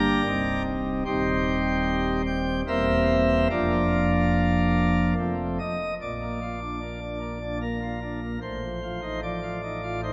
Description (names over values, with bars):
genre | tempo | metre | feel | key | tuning
classical, chorale-style piece for pipe organ | 74 BPM | 3/4 | rubato | Bb major | A4 = 441 Hz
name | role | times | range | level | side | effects
pipe organ, sparkling flutes | solo | 0.0-10.1 s | C1 to Bb5 | -26 LUFS | equal | none
room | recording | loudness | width
wet church reverb, RT60 2.5 s | none | -26 LUFS | mono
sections
0.0-6.0 A section; 6.0-10.1 B section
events
none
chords
0.3 Cm; 1.1 Cm/Eb; 2.7 C7/E; 3.5 Bb/F; 5.2 F; 6.0 Bb; 8.4 F7/A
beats
0.26 | 1.05 1.85 2.66 | 3.49 4.33 5.17 | 6.00 6.81 7.61 | 8.41 9.22 10.03